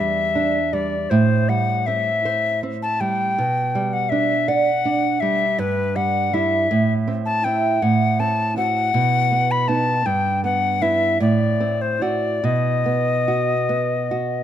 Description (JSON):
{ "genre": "romantic duo for recorder and classical guitar", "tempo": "53 BPM (dotted quarters)", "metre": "6/8", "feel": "rubato", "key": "G major, E minor from 5.6 s", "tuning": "A4 = 439 Hz", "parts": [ { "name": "alto recorder", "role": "melody", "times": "0.0-14.4 s", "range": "B4 to B5", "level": "-20 LUFS", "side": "left 4 dB", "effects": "none" }, { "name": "nylon-string guitar", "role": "accompaniment", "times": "0.0-14.4 s", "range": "E2 to D5", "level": "-21 LUFS", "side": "right 4 dB", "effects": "none" } ], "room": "light reverb", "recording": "close, detailed microphones", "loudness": "-18 LUFS", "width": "side -10 dB against mid", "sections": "0.0-14.4 A section", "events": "none", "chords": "0.0 Em7; 1.1 Am7; 3.4 G/B; 5.6 Em/G; 6.7 Am; 7.8 F#dim/A; 8.9 B; 10.1 Em/G; 11.2 F#dim/A; 12.4 B", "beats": "| 1.10 2.25 | 3.38 4.48 | 5.58 6.70 | 7.81 8.93 | 10.05 11.20 | 12.44 13.70" }